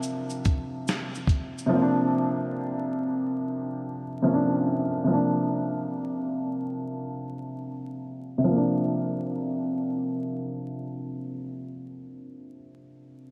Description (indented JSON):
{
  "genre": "lo-fi hip hop",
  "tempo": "71 BPM",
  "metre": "4/4",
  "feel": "swing 64% on 16ths",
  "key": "unclear",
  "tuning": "A4 = 440 Hz",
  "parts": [
    { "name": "warm upright piano", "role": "accompaniment", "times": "0.0-13.3 s", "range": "C3 to D4", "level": "-29 LUFS", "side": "equal", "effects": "low-pass filter" },
    { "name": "dusty soul sampler-style drum kit", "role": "drums", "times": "0.0-1.7 s", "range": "hi-hat, kick drum, shaker, snare drum", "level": "-28 LUFS", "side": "equal", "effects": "none" }
  ],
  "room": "moderate huge ambient reverb, RT60 3.8 s",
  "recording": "vinyl crackle, lossy compression artefacts",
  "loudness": "-28 LUFS",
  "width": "mono",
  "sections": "0.0-8.5 A section; 8.5-11.8 B section",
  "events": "filter sweep on upright piano 0.0-8.5",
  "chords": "0.0 Bb; 1.7 Csus2; 5.1 Bb",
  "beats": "0.02 0.86 | 1.71 2.55 3.40 4.24 | 5.09 5.93 6.78 7.62 | 8.47 9.31 10.16 11.01"
}